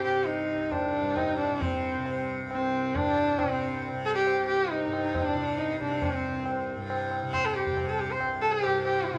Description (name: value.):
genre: indian classical, Hindustani.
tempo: 136 BPM.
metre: 5/4.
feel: straight.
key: unclear.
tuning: A4 = 437 Hz.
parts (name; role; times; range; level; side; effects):
rich sarangi; melody; 0.0-9.2 s; C4 to C5; -30 LUFS; equal; none.
tanpura; drone; 0.0-9.2 s; C2 to C3; -37 LUFS; equal; none.
tabla; percussion; 0.0-9.2 s; none; -36 LUFS; equal; none.
room: moderate recital hall reverb, RT60 1.5 s.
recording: close, detailed microphones.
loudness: -28 LUFS.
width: mono.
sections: 0.0-9.2 A section.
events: speeding up 0.0-9.2.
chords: none.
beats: 0.27 0.72 1.16 | 1.61 2.06 2.50 2.94 3.39 | 3.83 4.27 4.71 5.15 5.59 | 6.02 6.46 6.90 7.33 7.76 | 8.20 8.63 9.06.